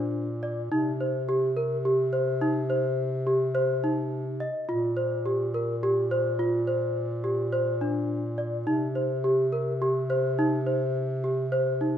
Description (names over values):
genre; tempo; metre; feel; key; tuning
contemporary instrumental, chamber music in an uneven meter; 106 BPM; 7/4; straight; C minor; A4 = 440 Hz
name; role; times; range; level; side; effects
celesta; arpeggios; 0.0-12.0 s; D4 to Eb5; -26 LUFS; equal; none
mellow bass clarinet; bass; 0.0-12.0 s; Bb2 to C3; -30 LUFS; equal; none
room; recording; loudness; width
moderate scoring stage reverb, RT60 1.5 s; none; -24 LUFS; side -9 dB against mid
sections
0.0-12.0 A section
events
none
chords
0.0 Bb; 0.7 Cm; 4.7 Bb69; 8.7 Cm